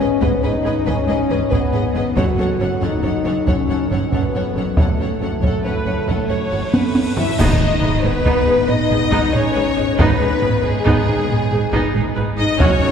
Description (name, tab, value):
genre	cinematic, epic orchestral film score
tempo	92 BPM (dotted quarters)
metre	12/8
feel	straight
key	G# phrygian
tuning	A4 = 439 Hz
part	clear symphonic violin section	melody	0.0-12.9 s	G#4 to F#5	-29 LUFS	left 4 dB	none
part	rich symphonic violin section	second line	0.0-12.9 s	G#4 to E5	-26 LUFS	left 1 dB	none
part	clear symphonic viola section	accompaniment	0.0-12.9 s	B3 to C#5	-25 LUFS	right 2 dB	none
part	mellow French horn section	sustained chords	0.0-12.9 s	G#3 to F#4	-21 LUFS	left 3 dB	none
part	clear symphonic cello section	bass	0.0-12.9 s	F#2 to G#2	-25 LUFS	right 2 dB	none
part	rich symphonic double bass section	bass	0.0-12.9 s	F#1 to G#1	-25 LUFS	right 2 dB	none
part	taiko ensemble	drums	0.2-12.9 s	none	-20 LUFS	equal	none
part	cymbal swell, clash cymbals and concert bass drum	percussion	4.8-8.2 s	none	-27 LUFS	equal	none
part	cymbal swell and impact	sound effects	6.4-10.0 s	none	-33 LUFS	equal	none
part	mellow flute section	second line	7.2-12.9 s	G#4 to E5	-28 LUFS	equal	none
part	timpani	percussion	7.4-8.0 s	G#2	-29 LUFS	right 2 dB	none
room	wet cathedral reverb, RT60 5.1 s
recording	recorded in a church or concert hall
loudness	-15 LUFS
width	side -7 dB against mid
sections	0.0-7.4 A section; 7.4-12.9 B section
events	cymbal swell 6.4-7.4; drum fill 6.7-7.4; band accent 7.4-7.8; impact 7.4-10.0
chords	0.0 G#m; 2.2 F#m; 7.4 G#m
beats	0.22 0.87 1.52 | 2.17 2.82 3.48 4.13 | 4.78 5.43 6.08 6.74 | 7.39 8.04 8.69 9.34 | 9.99 10.64 11.29 11.95 | 12.60